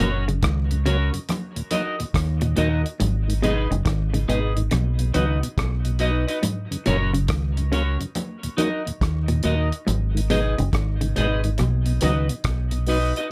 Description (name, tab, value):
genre	roots reggae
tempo	70 BPM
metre	4/4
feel	swing 65% on 16ths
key	B major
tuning	A4 = 440 Hz
part	clean electric guitar	accompaniment	0.0-13.3 s	C#4 to D#5	-30 LUFS	equal	analog chorus, dub echo
part	mellow tonewheel organ	accompaniment	0.0-13.0 s	D#2 to D#4	-30 LUFS	equal	overdrive, chorus vibrato, slow rotary speaker
part	semi-hollow electric guitar	arpeggios	0.0-12.3 s	G#2 to D#3	-30 LUFS	equal	none
part	deep dub fingered electric bass	bass	0.0-13.1 s	F#1 to D#2	-25 LUFS	equal	none
part	cloth-damped thuddy drum kit	drums	0.0-13.3 s	hi-hat, kick drum, rim click	-30 LUFS	equal	none
part	congas	percussion	0.0-12.3 s	none	-32 LUFS	equal	none
room	light reverb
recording	none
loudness	-23 LUFS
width	mono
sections	0.0-13.3 A section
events	none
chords	0.0 F#; 1.3 D#m; 3.0 G#m; 4.7 B; 6.4 F#; 8.2 D#m; 9.9 G#m; 11.6 B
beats	0.43 1.29 2.14 | 3.00 3.86 4.72 5.58 | 6.43 7.29 8.15 9.01 | 9.87 10.73 11.59 12.45